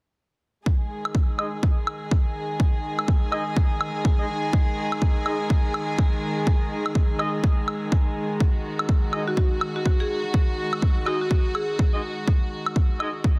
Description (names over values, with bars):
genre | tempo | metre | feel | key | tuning
bass house | 124 BPM | 4/4 | swing 61% on 16ths | unclear | A4 = 439 Hz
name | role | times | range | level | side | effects
warm chamber string section | sustained chords | 0.7-13.4 s | D#3 to G#4 | -31 LUFS | equal | sidechain pumping
electronic kick drum | drums | 0.7-13.4 s | none | -23 LUFS | equal | overdrive, studio ambience
woodblock | drums | 1.1-13.1 s | none | -32 LUFS | equal | overdrive, studio ambience
bright horn section | stabs | 1.4-13.1 s | G#3 to D#5 | -34 LUFS | equal | sidechain pumping, low-pass filter, digital delay
marimba with hard mallets | melody | 9.3-12.2 s | F#4 to G#4 | -32 LUFS | equal | digital delay
room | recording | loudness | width
light reverb, small room reverb | dense, heavily limited modern master | -24 LUFS | mono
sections
0.7-13.4 A section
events
none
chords
0.7 G#5